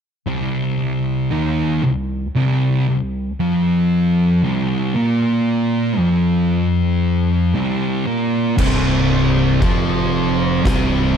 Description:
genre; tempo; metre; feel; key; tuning
stoner and doom metal; 58 BPM; 4/4; straight; C minor; A4 = 440 Hz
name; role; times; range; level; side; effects
thick fuzz guitar; riff; 0.3-11.2 s; C2 to Bb3; -19 LUFS; left 7 dB; distortion
thick fuzz guitar; riff; 0.3-11.1 s; C2 to Bb3; -19 LUFS; right 7 dB; distortion
distorted electric guitar; riff; 8.6-11.2 s; C2 to F3; -22 LUFS; right 1 dB; overdrive
growling fingered electric bass; bass; 8.6-11.1 s; C1 to F1; -22 LUFS; equal; overdrive
oversized low-tuned drum kit; drums; 8.6-10.9 s; crash cymbal, kick drum, snare drum; -21 LUFS; equal; none
room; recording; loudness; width
light reverb, small room ambience; dark, warm production; -15 LUFS; side -7 dB against mid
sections
0.3-8.6 A section; 8.6-11.2 B section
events
none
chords
0.3 Cm; 8.6 N.C.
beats
| 0.28 1.32 2.36 3.40 | 4.44 5.47 6.51 7.55 | 8.58 9.62 10.65

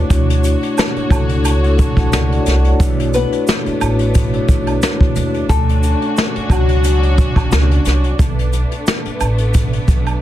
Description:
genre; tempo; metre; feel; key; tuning
hip hop, boom-bap hip-hop; 89 BPM; 4/4; swing 56% on 16ths; B minor; A4 = 440 Hz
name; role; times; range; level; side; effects
vibraphone with soft mallets; accompaniment; 0.0-5.5 s; A3 to C#6; -19 LUFS; left 2 dB; cassette tape, high-pass filter, low-pass filter
warm studio string section; sustained chords; 0.0-10.2 s; A3 to C#5; -24 LUFS; right 1 dB; high-pass filter, low-pass filter
upright bass; bass; 0.0-10.2 s; A1 to D#2; -16 LUFS; equal; none
jazz brush drum kit; drums; 0.1-10.2 s; hi-hat, kick drum, snare drum; -16 LUFS; equal; soft clipping on snare
tube shaker and woodblock; percussion; 0.1-10.2 s; none; -26 LUFS; right 7 dB; none
flamenco guitar; melody; 3.1-8.2 s; F#3 to B4; -21 LUFS; left 5 dB; high-pass filter, low-pass filter
room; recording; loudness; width
little or no reverb; dense, heavily limited modern master; -13 LUFS; side -13 dB against mid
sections
0.0-10.2 A section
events
none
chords
0.1 Dmaj7; 2.8 Bm11; 5.5 Dmaj7; 8.2 Bm7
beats
| 0.10 0.78 1.45 2.13 | 2.80 3.48 4.15 4.82 | 5.50 6.17 6.85 7.52 | 8.19 8.87 9.54

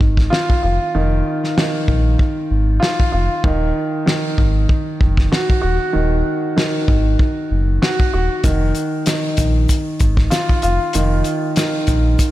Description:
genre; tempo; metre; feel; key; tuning
hip hop, boom-bap hip-hop; 96 BPM; 4/4; swing 55% on 16ths; unclear; A4 = 440 Hz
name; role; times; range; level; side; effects
dark concert grand piano; accompaniment; 0.0-12.3 s; Eb3 to Gb4; -19 LUFS; right 1 dB; cassette tape, high-pass filter, low-pass filter
sub bass with octave; bass; 0.0-12.2 s; Eb1 to Bb1; -17 LUFS; equal; none
warm soul drum kit; drums; 0.0-12.3 s; hi-hat, kick drum, snare drum; -17 LUFS; equal; none
tube shaker; percussion; 8.4-12.3 s; none; -34 LUFS; left 7 dB; none
room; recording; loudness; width
light reverb, studio reverb; none; -14 LUFS; side -15 dB against mid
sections
0.0-12.3 A section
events
break 0.0-8.4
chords
0.0 Fm7; 3.4 Ebm; 8.4 Fm7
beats
0.32 | 0.94 1.57 2.19 2.82 | 3.44 4.07 4.69 5.32 | 5.94 6.57 7.19 7.82 | 8.44 9.07 9.69 10.32 | 10.94 11.57 12.19

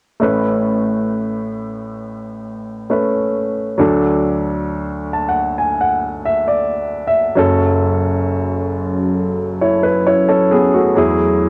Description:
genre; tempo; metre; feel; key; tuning
pop; 67 BPM; 4/4; straight; A major; A4 = 440 Hz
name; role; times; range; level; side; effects
clear baby grand piano; accompaniment; 0.2-11.5 s; F#1 to A5; -18 LUFS; equal; cassette tape
chorused pulse-width pad; sustained chords; 7.8-11.5 s; F#3 to A4; -23 LUFS; equal; cassette tape
room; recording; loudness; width
wet booth ambience, RT60 0.2 s; home recording on cassette; -17 LUFS; mono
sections
0.2-11.5 A section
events
grand piano fill 4.7-7.4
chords
0.2 Aadd9; 3.8 D; 7.4 F#m; 11.0 Eadd9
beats
| 0.22 1.12 2.01 2.91 | 3.81 4.70 5.60 6.49 | 7.39 8.28 9.18 10.07 | 10.97

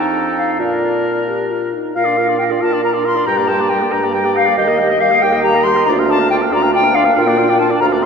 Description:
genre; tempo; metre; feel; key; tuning
quick classical-period movement for wind quintet; 92 BPM (dotted quarters); 6/8; straight; Bb major; A4 = 440 Hz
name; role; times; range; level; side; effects
concert flute; melody; 0.0-8.1 s; D5 to C6; -16 LUFS; left 3 dB; none
warm oboe; second line; 0.0-8.1 s; A4 to G5; -23 LUFS; equal; none
clear clarinet; accompaniment; 0.0-8.1 s; D4 to Bb4; -23 LUFS; right 6 dB; none
mellow French horn; accompaniment; 0.0-8.1 s; G3 to G4; -22 LUFS; right 1 dB; none
dark bassoon; bass; 0.0-8.1 s; D2 to Bb2; -18 LUFS; right 2 dB; none
room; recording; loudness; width
wet church reverb, RT60 3.0 s; minimal, uncompressed stereo recording; -12 LUFS; side -6 dB against mid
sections
0.0-2.0 A section; 2.0-8.1 A section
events
none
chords
0.0 F7; 0.6 Bb; 3.3 Gm; 4.6 Eb; 5.9 Bb/D; 7.2 Bb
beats
| 0.59 1.28 | 1.96 2.62 | 3.27 3.93 | 4.58 5.23 | 5.87 6.52 | 7.16 7.81

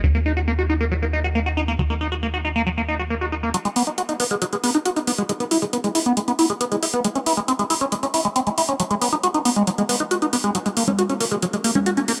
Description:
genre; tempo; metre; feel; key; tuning
uplifting trance; 137 BPM; 4/4; straight; G# minor; A4 = 435 Hz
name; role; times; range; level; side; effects
liquid acid bass; arpeggios; 0.0-12.1 s; F#3 to F#4; -23 LUFS; equal; phaser, lush chorus, digital delay
plucky analog bass; bass; 0.0-3.5 s; D#2; -25 LUFS; equal; none
electronic hi-hat and congas; drums; 3.5-12.2 s; none; -26 LUFS; equal; low-pass filter on hats, low-pass filter on perc, low-pass filter on room
room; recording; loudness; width
moderate huge ambient reverb, RT60 4.5 s; none; -21 LUFS; mono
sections
0.0-3.5 A section; 3.5-12.2 B section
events
build-up 3.5-12.2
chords
0.0 D#5; 3.5 G#m7; 5.3 E; 7.0 C#m; 8.8 G#m7; 10.5 F#add9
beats
| 0.04 0.48 0.91 1.35 | 1.79 2.23 2.67 3.10 | 3.54 3.98 4.42 4.86 | 5.29 5.73 6.17 6.61 | 7.04 7.48 7.92 8.36 | 8.80 9.23 9.67 10.11 | 10.55 10.99 11.43 11.86

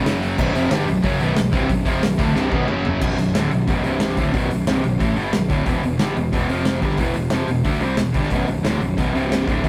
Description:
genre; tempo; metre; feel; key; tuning
heavy metal; 181 BPM; 4/4; straight; B minor; A4 = 441 Hz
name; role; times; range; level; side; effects
distorted electric guitar; riff; 0.0-9.7 s; B1 to D4; -27 LUFS; equal; distortion
sludgy distorted guitar; riff; 0.0-9.7 s; B1 to D4; -25 LUFS; equal; overdrive
tight distorted guitar; riff; 0.0-3.0 s; B1 to G3; -29 LUFS; equal; distortion
fuzz picked electric bass; bass; 0.0-9.7 s; B0 to D2; -27 LUFS; equal; overdrive
modern studio drum kit; drums; 0.1-9.7 s; crash cymbal, hi-hat, kick drum, snare drum, toms; -26 LUFS; equal; none
room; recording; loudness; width
moderate studio reverb, RT60 0.6 s; rough rehearsal-room recording, tube saturation; -20 LUFS; mono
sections
0.0-3.0 A section; 3.0-9.7 B section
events
drum fill 2.4-3.0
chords
0.1 F#5; 0.4 Bm; 2.7 F#5; 3.0 Bm; 3.8 C5; 4.2 Bm; 5.7 E5; 6.5 F5; 6.8 E5; 8.3 Bm; 9.1 C5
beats
0.05 | 0.38 0.71 1.04 1.37 | 1.70 2.03 2.36 2.69 | 3.02 3.35 3.68 4.01 | 4.34 4.67 5.00 5.33 | 5.67 6.00 6.33 6.66 | 6.99 7.32 7.65 7.98 | 8.31 8.64 8.97 9.30 | 9.63

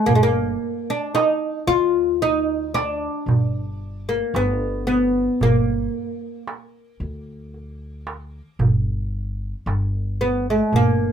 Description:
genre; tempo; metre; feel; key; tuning
Arabic maqam ensemble; 113 BPM (eighths); 10/8; straight; G maqam saba; A4 = 440 Hz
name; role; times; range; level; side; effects
oud; melody; 0.0-11.1 s; Ab3+50c to F4; -20 LUFS; equal; none
upright bass; bass; 0.1-11.1 s; G1 to D2; -26 LUFS; equal; none
darbuka; percussion; 0.1-11.0 s; none; -21 LUFS; right 2 dB; none
room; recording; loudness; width
moderate studio ambience, RT60 0.5 s; minimal, uncompressed stereo recording; -19 LUFS; side -8 dB against mid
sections
0.1-11.1 A section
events
none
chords
none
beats
| 0.07 0.61 1.14 1.67 2.21 2.74 3.27 3.81 4.34 4.87 | 5.41 5.94 6.47 7.00 7.54 8.07 8.60 9.13 9.66 10.20 | 10.73

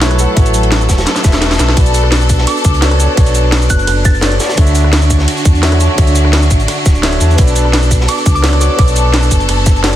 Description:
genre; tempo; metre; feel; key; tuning
liquid drum and bass; 171 BPM; 4/4; straight; B minor; A4 = 440 Hz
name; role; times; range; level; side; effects
warm concert grand piano; accompaniment; 0.0-10.0 s; D3 to A5; -18 LUFS; equal; dub echo
clear studio string section; sustained chords; 0.0-10.0 s; F#3 to A4; -19 LUFS; equal; sidechain pumping
sub bass with octave; bass; 0.0-10.0 s; D1 to E2; -12 LUFS; equal; none
crunchy breakbeat drum kit; drums; 0.0-9.9 s; hi-hat, snare drum; -24 LUFS; equal; none
drum and bass drum kit; drums; 0.0-10.0 s; hi-hat, ride cymbal, rim click, shaker, snare drum; -17 LUFS; equal; none
electronic kick drum; drums; 0.4-9.7 s; none; -10 LUFS; equal; none
soft synth bell; melody; 2.5-4.2, 8.1-9.1 s; D6 to A6; -21 LUFS; right 2 dB; chorus, dub echo
room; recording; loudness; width
light reverb, small room ambience; dense, heavily limited modern master; -9 LUFS; side -12 dB against mid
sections
0.0-10.0 A section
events
drum fill 1.1-1.8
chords
0.0 A6; 1.8 Bm9; 4.6 Dmaj7; 7.4 Bm9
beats
0.02 | 0.37 0.72 1.07 1.42 | 1.77 2.12 2.47 2.82 | 3.17 3.52 3.88 4.23 | 4.58 4.93 5.28 5.63 | 5.98 6.33 6.68 7.03 | 7.38 7.74 8.09 8.44 | 8.79 9.14 9.49 9.84

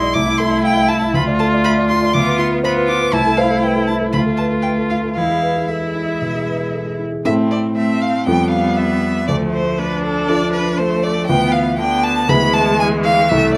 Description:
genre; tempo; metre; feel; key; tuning
quick classical-period movement for piano quartet; 119 BPM; 4/4; straight; A minor; A4 = 439 Hz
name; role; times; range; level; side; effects
rich violin; melody; 0.0-13.6 s; A4 to D6; -22 LUFS; equal; none
rich cello; second line; 0.0-13.6 s; D3 to B3; -24 LUFS; equal; none
dark grand piano; accompaniment; 0.0-13.6 s; B1 to F5; -21 LUFS; equal; none
rich viola; accompaniment; 0.0-13.6 s; G#3 to F4; -24 LUFS; equal; none
room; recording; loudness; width
moderate large studio reverb, RT60 0.9 s; none; -17 LUFS; mono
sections
0.0-7.3 A section; 7.3-13.6 B section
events
none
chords
0.1 Am/C; 1.1 Dm; 2.1 Bdim/D; 3.1 Am/C; 4.1 Bm7b5/D; 5.2 E; 7.3 Am; 8.3 F; 9.3 Dm; 11.3 Bdim/D; 12.3 E7/D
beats
0.14 0.64 | 1.14 1.63 2.13 2.63 | 3.13 3.63 4.13 4.64 | 5.17 5.69 6.22 6.74 | 7.26 7.77 8.27 8.78 | 9.28 9.78 10.28 10.79 | 11.29 11.79 12.29 12.80 | 13.30

